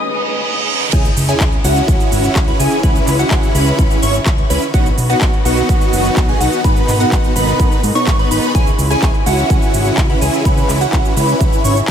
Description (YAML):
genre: EDM, festival progressive house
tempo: 126 BPM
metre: 4/4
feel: straight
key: C# minor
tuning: A4 = 440 Hz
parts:
  - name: muted studio string section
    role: sustained chords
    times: 0.0-11.9 s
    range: B2 to D#6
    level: -23 LUFS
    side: left 1 dB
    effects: sidechain pumping
  - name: reverse cymbal and sub drop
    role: sound effects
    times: 0.1-2.8 s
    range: none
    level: -22 LUFS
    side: right 4 dB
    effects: none
  - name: plucky unison lead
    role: arpeggios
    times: 0.9-11.8 s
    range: F#5 to C#6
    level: -21 LUFS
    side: equal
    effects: wide subtle chorus, sidechain pumping, ping-pong delay
  - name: big supersaw lead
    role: riff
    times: 0.9-11.8 s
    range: B3 to C#5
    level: -18 LUFS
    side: right 1 dB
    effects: sidechain pumping, ping-pong delay
  - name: fat analog bass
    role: bass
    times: 0.9-11.9 s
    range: F#1 to G#2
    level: -18 LUFS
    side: equal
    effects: sidechain pumping, high-pass filter
  - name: big-room dance drum kit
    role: drums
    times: 0.9-11.9 s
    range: crash cymbal, handclaps, hi-hat, shaker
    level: -23 LUFS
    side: right 1 dB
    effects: none
  - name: electronic kick drum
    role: drums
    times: 0.9-11.9 s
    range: none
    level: -14 LUFS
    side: equal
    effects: none
room: light reverb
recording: none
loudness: -12 LUFS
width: side -8 dB against mid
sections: 0.9-11.9 A section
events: break 0.0-0.9; reverse cymbal 0.1-0.9; drop 0.9-11.9; impact 0.9-2.8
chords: 0.0 G#m; 0.9 C#m; 4.7 B; 6.6 G#m; 8.5 C#m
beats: 0.45 | 0.93 1.41 1.88 2.36 | 2.83 3.31 3.79 4.26 | 4.74 5.21 5.69 6.17 | 6.64 7.12 7.60 8.07 | 8.55 9.03 9.50 9.98 | 10.45 10.93 11.40 11.88